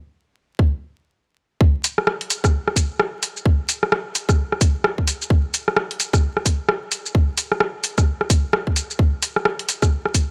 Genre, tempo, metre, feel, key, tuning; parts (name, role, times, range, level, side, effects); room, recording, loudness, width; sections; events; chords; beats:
future garage; 130 BPM; 4/4; swing 61% on 16ths
electronic kick drum; drums; 0.6-10.3 s; -19 LUFS; equal; small room ambience
garage drum kit; drums; 1.8-10.3 s; hi-hat, rim click, shaker; -22 LUFS; equal; small room ambience
little or no reverb; dry, gritty hardware recording, vinyl crackle; -21 LUFS; mono
0.0-1.6 A section; 1.6-10.3 B section
stop 0.7-1.6
0.23 0.69 1.15 | 1.61 2.07 2.53 2.99 | 3.46 3.92 4.38 4.84 | 5.30 5.76 6.22 6.69 | 7.15 7.61 8.07 8.53 | 8.99 9.46 9.92